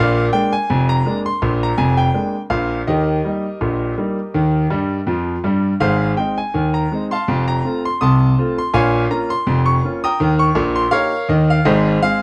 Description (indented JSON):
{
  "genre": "ragtime piano",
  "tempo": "82 BPM",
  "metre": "2/4",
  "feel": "swing 55% on 16ths",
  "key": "unclear",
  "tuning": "A4 = 440 Hz",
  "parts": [
    { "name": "clear concert grand piano", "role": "solo", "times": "0.0-12.2 s", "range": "F1 to Eb6", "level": "-18 LUFS", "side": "equal", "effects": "none" }
  ],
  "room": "moderate spring reverb, RT60 1.3 s",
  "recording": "dark, warm production",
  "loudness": "-18 LUFS",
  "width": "mono",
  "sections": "0.0-12.2 A section",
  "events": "grand piano fill 4.7-5.8",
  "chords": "0.0 Bb7; 2.9 Eb; 5.8 Ab; 7.3 F; 8.7 Bbm; 10.2 Eb7; 11.7 Ab"
}